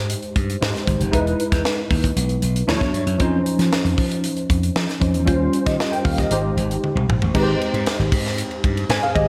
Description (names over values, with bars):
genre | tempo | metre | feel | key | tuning
polished 1980s jazz-funk pop | 116 BPM | 4/4 | straight | Ab major | A4 = 439 Hz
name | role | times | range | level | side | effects
tine electric piano | accompaniment | 0.0-9.3 s | F3 to Ab5 | -24 LUFS | equal | ensemble chorus
slap bass | bass | 0.0-9.3 s | E1 to F3 | -24 LUFS | equal | none
tight funk drum kit | drums | 0.1-9.3 s | crash cymbal, hi-hat, kick drum, ride cymbal, snare drum, toms | -25 LUFS | equal | none
room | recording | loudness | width
moderate lush hall reverb, RT60 2.2 s | dreamy mix soaked in reverb | -20 LUFS | mono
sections
0.0-7.3 A section; 7.3-9.3 A section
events
drum fill 6.8-7.3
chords
0.0 Abmaj7; 1.1 Emaj7; 2.7 Dmaj9; 3.2 Dbmaj9/F; 5.3 Eb13; 6.3 Abmaj7